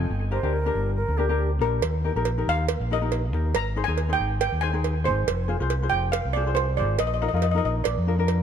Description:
calypso; 139 BPM; 4/4; straight; Eb major; A4 = 440 Hz
steel pan; melody; 0.0-8.4 s; Bb4 to Bb5; -28 LUFS; right 1 dB; tape echo
ukulele; accompaniment; 0.0-8.4 s; C4 to C5; -30 LUFS; left 6 dB
overdriven fingered electric bass; bass; 0.0-8.4 s; F1 to F2; -25 LUFS; equal
mellow silver concert flute; second line; 0.3-1.5 s; G4 to C5; -32 LUFS; right 3 dB
cowbell; percussion; 1.8-8.4 s; -30 LUFS; right 10 dB
light reverb; -22 LUFS; side -8 dB against mid
0.0-8.4 A section
0.1 Gm; 1.8 Eb; 3.6 Ab; 5.3 Fm; 7.0 Bbsus4; 7.9 Bb
| 0.10 0.54 0.97 1.40 | 1.83 2.26 2.69 3.12 | 3.55 3.98 4.42 4.85 | 5.28 5.71 6.14 6.57 | 7.00 7.43 7.86 8.29

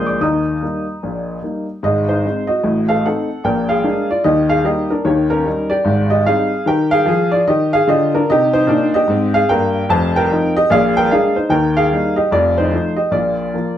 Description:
jazz, stride piano; 149 BPM; 4/4; swing 62% on 8ths; Eb major; A4 = 437 Hz
warm upright piano; solo; 0.0-13.8 s; F1 to Eb6; -14 LUFS; equal
wet studio reverb, RT60 0.6 s; heard from further back in the room; -14 LUFS; side -11 dB against mid
0.0-1.8 A section; 1.8-13.8 B section
0.2 Eb; 1.8 Ab; 2.6 Adim7; 3.4 Bb7; 4.3 Eb; 5.1 Eb7; 5.9 Abmaj7; 6.7 Eb; 8.3 Cm7; 9.9 F5; 10.7 Bb7; 11.5 Eb; 12.3 F7; 13.1 Bb
| 0.22 0.62 1.02 1.43 | 1.83 2.23 2.64 3.04 | 3.44 3.85 4.25 4.65 | 5.06 5.46 5.86 6.27 | 6.67 7.07 7.48 7.88 | 8.28 8.69 9.09 9.49 | 9.90 10.30 10.71 11.11 | 11.51 11.92 12.32 12.72 | 13.13 13.53

